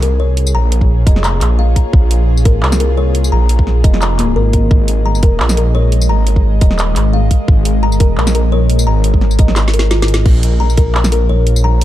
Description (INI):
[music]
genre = half-time drum and bass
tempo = 173 BPM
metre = 4/4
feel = swing 54% on 16ths, half-time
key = Bb minor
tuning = A4 = 440 Hz
[part]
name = bowed-like drone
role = sustained chords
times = 0.0-11.8 s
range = Ab3 to Eb5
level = -22 LUFS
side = left 1 dB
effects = built-in reverb, sidechain pumping
[part]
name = kalimba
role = arpeggios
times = 0.0-11.8 s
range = Bb3 to Bb5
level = -20 LUFS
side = left 4 dB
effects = ping-pong delay
[part]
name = dark detuned saw bass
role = bass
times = 0.0-11.8 s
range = Eb1 to C2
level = -12 LUFS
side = equal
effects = tube saturation
[part]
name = drum and bass drum kit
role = drums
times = 0.0-11.8 s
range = crash cymbal, handclaps, hi-hat, snare drum, tambourine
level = -20 LUFS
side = equal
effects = none
[part]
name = electronic kick drum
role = drums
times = 0.8-10.9 s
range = none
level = -10 LUFS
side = equal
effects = none
[sound]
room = little or no reverb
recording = dark, warm production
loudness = -10 LUFS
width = side -14 dB against mid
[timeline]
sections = 0.0-10.3 A section; 10.3-11.8 A section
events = drop 0.0-10.3, 10.3-11.8; kick drops out 9.6-10.3; drum fill 9.6-10.3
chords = 0.0 Bbm7; 4.7 Absus2; 10.3 Bbm7